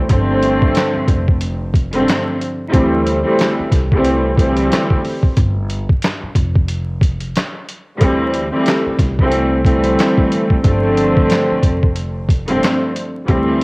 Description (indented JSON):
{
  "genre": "hip hop, boom-bap hip-hop",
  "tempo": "91 BPM",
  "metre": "4/4",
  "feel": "swing 58% on 16ths",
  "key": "unclear",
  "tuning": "A4 = 444 Hz",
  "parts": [
    { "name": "warm chamber string section", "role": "accompaniment", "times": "0.0-13.6 s", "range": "D2 to C4", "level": "-15 LUFS", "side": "equal", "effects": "cassette tape, high-pass filter, low-pass filter" },
    { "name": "upright bass", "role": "bass", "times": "0.1-13.6 s", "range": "F1 to D2", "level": "-21 LUFS", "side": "equal", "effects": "none" },
    { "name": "boom bap sampler-style drum kit", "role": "drums", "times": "0.1-13.6 s", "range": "handclaps, hi-hat, kick drum, snare drum", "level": "-16 LUFS", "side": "equal", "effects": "vintage 12-bit sampler grit, cassette tape" }
  ],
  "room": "small room ambience",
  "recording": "home recording on cassette, vinyl crackle",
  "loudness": "-13 LUFS",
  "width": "side -27 dB against mid",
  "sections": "0.0-13.6 A section",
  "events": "break 5.4-8.0",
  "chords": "0.1 G9sus4; 2.7 D9sus4; 5.4 Fsus2; 8.0 D9sus4; 10.6 G9sus4"
}